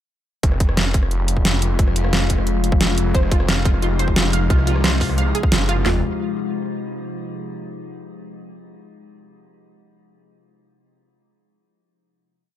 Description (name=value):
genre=dark technical drum and bass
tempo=177 BPM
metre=4/4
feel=straight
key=F minor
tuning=A4 = 442 Hz
part: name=metallic inharmonic drone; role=sustained chords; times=0.9-6.0 s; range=C3 to F4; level=-26 LUFS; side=left 3 dB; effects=chorus, built-in reverb, sidechain pumping
part: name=snarling distorted saw bass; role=bass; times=0.4-6.0 s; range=F1 to C2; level=-20 LUFS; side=equal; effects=distortion, tube saturation, sidechain pumping
part: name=drum and bass drum kit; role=drums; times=0.4-5.9 s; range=handclaps, kick drum, snare drum, toms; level=-18 LUFS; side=equal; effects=overdrive
part: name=dubstep drum kit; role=drums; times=0.4-5.8 s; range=hi-hat, rim click, snare drum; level=-21 LUFS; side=right 1 dB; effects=overdrive
part: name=wide unison pluck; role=arpeggios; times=3.1-6.0 s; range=F4 to F5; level=-26 LUFS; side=right 2 dB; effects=flanger, sidechain pumping, tape echo
room=digital ambience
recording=none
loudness=-16 LUFS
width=side -12 dB against mid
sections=0.4-5.9 drop; 5.9-7.2 final chord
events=drop 0.4-5.9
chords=0.4 Fm; 5.9 N.C.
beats=| 0.43 0.77 1.11 1.45 | 1.79 2.13 2.47 2.81 | 3.15 3.48 3.82 4.16 | 4.50 4.84 5.18 5.52 | 5.86